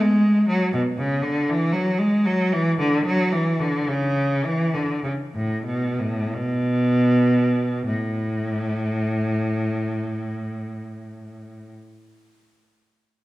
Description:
classical, baroque-style suite movement for unaccompanied cello; 38-63 BPM; 3/4; rubato; A major; A4 = 440 Hz
rich cello; solo; 0.0-11.7 s; A2 to G#3; -20 LUFS; equal
wet recital hall reverb, RT60 1.7 s; -20 LUFS; side -17 dB against mid
0.0-7.9 A section; 7.9-12.3 B section
slowing down 0.0-7.9

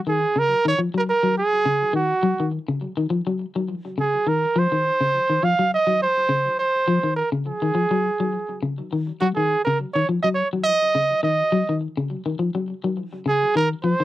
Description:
afrobeat; 103 BPM; 4/4; swing 55% on 16ths; A4 = 443 Hz
warm trumpet; melody; 0.1-14.0 s; Gb4 to F5; -20 LUFS; right 3 dB
electric guitar at the edge of break-up; arpeggios; 0.1-14.0 s; Db3 to Gb3; -23 LUFS; left 3 dB; tape echo
little or no reverb; dry, close 1970s-style studio recording; -19 LUFS; side -14 dB against mid
0.0-14.0 A section
0.0 Dbadd9

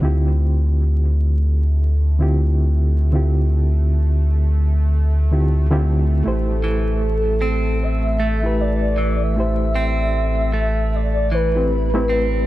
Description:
trip hop; 77 BPM; 4/4; swing 59% on 16ths; A minor; A4 = 436 Hz
reed electric piano; accompaniment; 0.0-12.5 s; D3 to C5; -24 LUFS; equal; tremolo, low-pass filter, tape echo
warm sub bass; bass; 0.0-12.5 s; A1 to D2; -17 LUFS; equal
bowed-like drone; texture; 0.4-12.5 s; A3; -32 LUFS; equal; built-in reverb
pure breathy sine lead; melody; 6.3-12.5 s; A4 to E5; -23 LUFS; equal; ensemble chorus, tape echo
clean electric guitar; arpeggios; 6.6-12.5 s; E3 to C4; -26 LUFS; right 1 dB; tape echo
digital ambience; dark, warm production, vinyl crackle; -16 LUFS; side -16 dB against mid
0.0-12.5 A section
filter sweep on reed electric piano 0.0-12.5
0.0 Dm11; 6.3 Am7

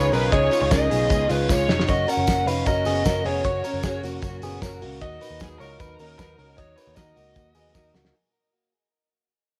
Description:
jangly indie pop; 153 BPM; 4/4; straight; A4 = 439 Hz
smooth overdriven lead guitar; melody; 0.0-7.9 s; Ab4 to Gb5; -27 LUFS; equal; cassette tape
picked steel-string acoustic guitar; accompaniment; 0.0-8.2 s; Db3 to Bb4; -35 LUFS; equal; cassette tape
warm studio string section; sustained chords; 0.0-8.1 s; Bb2 to Ab4; -37 LUFS; equal; cassette tape
direct-recorded clean electric guitar; arpeggios; 0.0-8.1 s; Gb3 to Eb5; -30 LUFS; equal; cassette tape
vintage muted picked electric bass; bass; 0.0-8.1 s; F1 to Eb2; -31 LUFS; equal
cloth-damped thuddy drum kit; drums; 0.1-8.1 s; hi-hat, kick drum, snare drum; -29 LUFS; equal; cassette tape
tambourine; percussion; 0.1-8.0 s; -44 LUFS; equal
little or no reverb; home recording on cassette; -22 LUFS; mono
0.0-8.1 A section
fade-out 0.0-8.1; drum fill 1.5-1.9, 7.7-8.1
0.0 Dbadd9; 5.0 Ebm

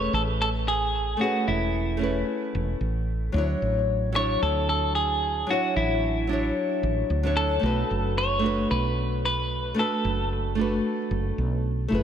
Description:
sunset chillout; 112 BPM; 4/4; swing 58% on 16ths; A4 = 440 Hz
clean electric guitar; melody; 0.0-10.3 s; E4 to C#5; -27 LUFS; right 2 dB; tape echo
nylon-string guitar; accompaniment; 0.0-12.0 s; F#3 to C#5; -27 LUFS; moving between left 4 dB and right 2 dB; auto-pan, ping-pong delay
woody fretless electric bass; bass; 0.0-12.0 s; E1 to D2; -27 LUFS; equal
moderate lush hall reverb, RT60 2.8 s; -23 LUFS; side -9 dB against mid
0.0-12.0 A section
0.0 Amaj9; 3.4 Dmaj9; 7.6 Bm7

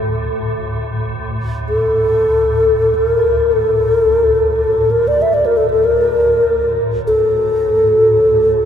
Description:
world meditative, free-time meditation music; free time; A4 = 440 Hz
mellow bass flute; melody; 0.0-8.7 s; A4 to E5; -12 LUFS; left 1 dB; shimmer reverb, tape echo
swarming drone; drone; 0.0-8.7 s; D2 to A2; -22 LUFS; equal; built-in reverb
wet huge ambient reverb, RT60 3.8 s; -12 LUFS; side -8 dB against mid
0.0-8.7 A section

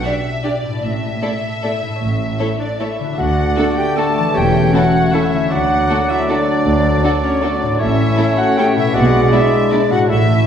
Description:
classical, orchestral ballroom waltz; 155 BPM; 3/4; uneven beats, rubato; D major; A4 = 440 Hz
rich studio violin section; melody; 0.0-10.5 s; C#5 to A5; -25 LUFS; left 3 dB
clear studio violin section; second line; 0.0-9.8 s; D4 to D5; -26 LUFS; equal
warm studio viola section; accompaniment; 0.0-9.8 s; G#3 to E4; -25 LUFS; right 1 dB
concert harp; arpeggios; 0.0-10.5 s; A2 to D5; -23 LUFS; left 3 dB
rich studio cello section; bass; 0.8-10.4 s; D2 to B2; -22 LUFS; right 2 dB
rich studio double bass section; bass; 0.8-10.4 s; E1 to D2; -23 LUFS; right 3 dB
clear clarinet; second line; 2.6-10.5 s; C#4 to A4; -22 LUFS; left 1 dB
silver concert flute; second line; 2.6-10.5 s; C#5 to A5; -20 LUFS; equal
bright oboe; second line; 3.2-10.5 s; C#5 to E5; -24 LUFS; right 2 dB
clear bassoon; accompaniment; 3.2-10.5 s; F#3 to A3; -23 LUFS; equal
mellow French horn section; sustained chords; 3.2-10.5 s; G#3 to E4; -21 LUFS; left 4 dB
wet recital hall reverb, RT60 1.3 s; heard from further back in the room, nothing above 11.0 kHz; -13 LUFS; side -8 dB against mid
0.0-3.2 A section; 3.2-10.5 B section
0.0 G/B; 0.8 Asus4; 2.0 A; 3.2 D; 4.4 A7/E; 5.5 D; 7.8 A; 8.9 E7/B

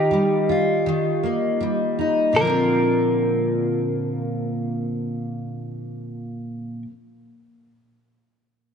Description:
acoustic pop; 80 BPM; 4/4; swing 55% on 16ths; Bb major; A4 = 440 Hz
direct-recorded clean electric guitar; melody; 0.0-6.8 s; G4 to Bb4; -24 LUFS; right 2 dB
picked steel-string acoustic guitar; accompaniment; 0.0-6.9 s; Bb2 to F4; -22 LUFS; left 1 dB; double-tracked left and right
wet plate reverb, RT60 3.1 s; nothing above 10.9 kHz; -19 LUFS; side -7 dB against mid
0.0-2.4 A section; 2.4-5.4 B section
0.0 Ebadd9; 2.4 Bbadd9

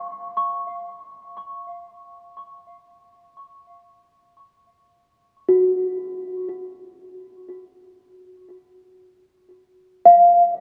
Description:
ambient; free time; A4 = 438 Hz
small celesta; solo; 0.0-10.6 s; Gb4 to Db6; -18 LUFS; equal; tape echo
wet cathedral reverb, RT60 5.3 s; in a vast, echoing space; -18 LUFS; mono
0.0-6.8 A section; 6.8-10.6 B section
0.0 Db/F; 0.8 N.C.

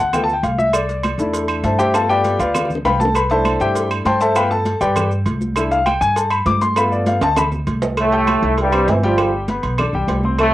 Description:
latin, salsa; 199 BPM; 4/4; straight; C major; A4 = 440 Hz
warm grand piano; accompaniment; 0.0-10.5 s; G3 to G6; -18 LUFS; left 2 dB; cassette tape
upright bass; bass; 0.0-10.5 s; G1 to G2; -22 LUFS; right 1 dB
agogo bells and timbales; percussion; 0.1-10.5 s; -25 LUFS; right 5 dB
claves; percussion; 0.1-10.5 s; -31 LUFS; right 1 dB
congas; percussion; 0.1-10.5 s; -25 LUFS; equal
cowbell and bongos; percussion; 0.1-10.5 s; -29 LUFS; left 2 dB
maracas; percussion; 0.1-8.0 s; -37 LUFS; right 5 dB
mellow trombone section; melody; 8.0-10.5 s; G2 to F4; -16 LUFS; right 1 dB; cassette tape
moderate booth ambience, RT60 0.3 s; home recording on cassette; -15 LUFS; side -15 dB against mid
0.0-8.0 A section; 8.0-10.5 B section
grand piano solo 0.0-8.0; drum fill 2.5-3.1, 7.2-8.0
0.0 G7; 0.7 C6; 1.9 G7; 3.1 C6; 4.4 G7; 5.6 C6; 6.8 G7; 8.0 C6; 9.2 G7

